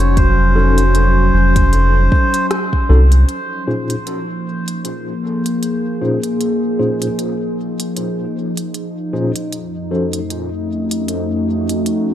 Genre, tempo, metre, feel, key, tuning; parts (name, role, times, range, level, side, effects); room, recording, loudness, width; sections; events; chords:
ambient dub; 77 BPM; 4/4; swing 57% on 16ths; Bb minor; A4 = 442 Hz
melodica; melody; 0.0-2.5 s; C5 to Db5; -21 LUFS; right 1 dB; dub echo
warbly tape-like pad; sustained chords; 0.0-12.1 s; F2 to Eb5; -20 LUFS; equal; chorus, built-in reverb
round analog bass; bass; 0.0-3.2 s; F1 to C2; -12 LUFS; equal; tube saturation
organic electronic drum kit; drums; 0.0-12.0 s; hi-hat, rim click; -25 LUFS; right 1 dB; studio reverb
electronic kick drum; drums; 0.2-2.9 s; -16 LUFS; equal; studio reverb
tine electric piano; stabs; 0.6-10.2 s; Bb2 to C5; -23 LUFS; left 2 dB; medium tremolo, dub echo
light reverb, digital ambience; -14 LUFS; side -11 dB against mid
0.0-3.3 A section; 3.3-12.1 B section
band accent 2.5-2.9
0.0 F7b9b13; 3.3 Bbm11; 9.5 F7b9b13